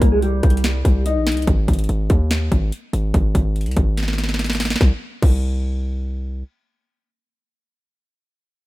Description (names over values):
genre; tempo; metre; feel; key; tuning
hip hop, trap; 144 BPM; 4/4; half-time; C minor; A4 = 440 Hz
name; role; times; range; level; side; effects
mellow electric guitar; melody; 0.0-1.5 s; G3 to Eb5; -22 LUFS; left 1 dB; phaser, low-pass filter, ping-pong delay
hard-hitting 808-style bass; bass; 0.0-6.4 s; Ab1 to Eb2; -19 LUFS; equal; none
trap drum kit; drums; 0.0-5.3 s; crash cymbal, hi-hat, kick drum, snare drum; -19 LUFS; equal; none
room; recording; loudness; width
little or no reverb; rough home demo mix; -17 LUFS; side -18 dB against mid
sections
0.0-4.8 A section; 4.8-8.1 B section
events
break 1.5-4.8; drum fill 4.0-4.8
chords
0.0 Cm; 1.5 N.C.